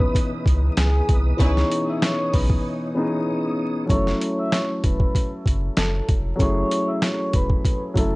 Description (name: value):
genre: hip hop, boom-bap hip-hop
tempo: 96 BPM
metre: 4/4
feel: swing 56% on 16ths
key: F# dorian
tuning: A4 = 440 Hz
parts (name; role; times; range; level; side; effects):
- vibraphone with soft mallets; melody; 0.0-7.8 s; G#4 to E6; -28 LUFS; equal; high-pass filter, low-pass filter, tape echo
- dark grand piano; accompaniment; 0.0-8.2 s; E3 to A4; -25 LUFS; left 1 dB; cassette tape, high-pass filter, low-pass filter
- tonewheel organ; sustained chords; 0.0-3.9 s; B2 to D#5; -31 LUFS; equal; chorus vibrato, slow rotary speaker, high-pass filter, low-pass filter
- warm sub bass; bass; 0.0-8.2 s; E1 to C#2; -22 LUFS; equal; none
- boom bap sampler-style drum kit; drums; 0.0-8.1 s; hi-hat, kick drum, snare drum; -21 LUFS; equal; none
- warm studio string section; stabs; 1.4-1.7 s; E4 to B4; -34 LUFS; right 1 dB; high-pass filter, low-pass filter, tape echo
room: small room ambience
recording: dry, gritty hardware recording, vinyl crackle, nothing above 10.3 kHz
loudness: -19 LUFS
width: side -22 dB against mid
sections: 0.0-3.9 A section; 3.9-8.2 B section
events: break 2.6-3.9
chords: 0.0 C#m9; 3.9 F#m9